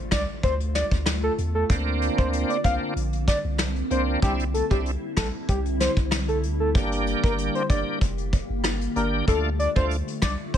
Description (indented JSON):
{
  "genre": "dancehall",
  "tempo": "95 BPM",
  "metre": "4/4",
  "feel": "straight",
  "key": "D minor",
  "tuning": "A4 = 440 Hz",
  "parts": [
    { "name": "glassy FM pad", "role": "sustained chords", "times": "0.0-10.6 s", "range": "D3 to G4", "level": "-32 LUFS", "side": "left 1 dB", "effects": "ensemble chorus, built-in reverb, sidechain pumping" },
    { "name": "impact", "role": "sound effects", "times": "0.0-1.7 s", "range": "none", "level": "-42 LUFS", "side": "equal", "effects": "none" },
    { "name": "soft octave-layered synth lead", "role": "melody", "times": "0.1-10.6 s", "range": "G4 to F5", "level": "-28 LUFS", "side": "left 1 dB", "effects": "chorus, digital delay" },
    { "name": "punchy sub bass", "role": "bass", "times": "0.1-10.6 s", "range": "F1 to E2", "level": "-27 LUFS", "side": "equal", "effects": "none" },
    { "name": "soft brush drum kit", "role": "drums", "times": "0.1-10.6 s", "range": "hi-hat, kick drum, rim click, snare drum", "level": "-25 LUFS", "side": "equal", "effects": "vintage 12-bit sampler grit" },
    { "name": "bright tonewheel organ", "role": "accompaniment", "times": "1.7-10.0 s", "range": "A3 to G4", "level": "-28 LUFS", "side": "right 2 dB", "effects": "overdrive, chorus vibrato, slow rotary speaker" }
  ],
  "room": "studio reverb",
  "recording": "none",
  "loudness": "-22 LUFS",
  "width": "side -9 dB against mid",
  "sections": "0.0-10.6 A section",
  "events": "impact 0.0-1.7",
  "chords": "0.0 Dm; 1.7 Bbadd9; 4.2 Cadd9; 6.8 Gm; 9.3 Dm"
}